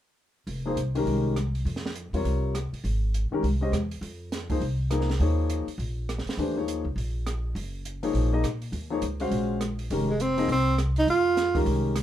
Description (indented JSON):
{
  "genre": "modal jazz",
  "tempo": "204 BPM",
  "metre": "4/4",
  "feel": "swing 61% on 8ths",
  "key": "F minor",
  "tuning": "A4 = 440 Hz",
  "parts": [
    { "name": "upright bass", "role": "bass", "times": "0.5-12.0 s", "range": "F1 to Bb2", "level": "-28 LUFS", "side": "equal", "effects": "none" },
    { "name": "compact cocktail drum kit", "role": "drums", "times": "0.5-12.0 s", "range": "hi-hat, kick drum, rim click, snare drum", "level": "-36 LUFS", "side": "right 2 dB", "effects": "none" },
    { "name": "warm concert grand piano", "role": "accompaniment", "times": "0.7-11.9 s", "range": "C3 to F5", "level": "-28 LUFS", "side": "left 3 dB", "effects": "none" },
    { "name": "breathy tenor saxophone", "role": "melody", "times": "10.1-11.6 s", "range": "Ab3 to F4", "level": "-23 LUFS", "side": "right 2 dB", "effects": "none" }
  ],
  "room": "light reverb",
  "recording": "band playing live in one room",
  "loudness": "-24 LUFS",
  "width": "side -11 dB against mid",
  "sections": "0.5-9.9 A section; 9.9-12.0 B section",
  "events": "none",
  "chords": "0.5 Fm11; 5.2 Ebm11; 9.9 Fm11"
}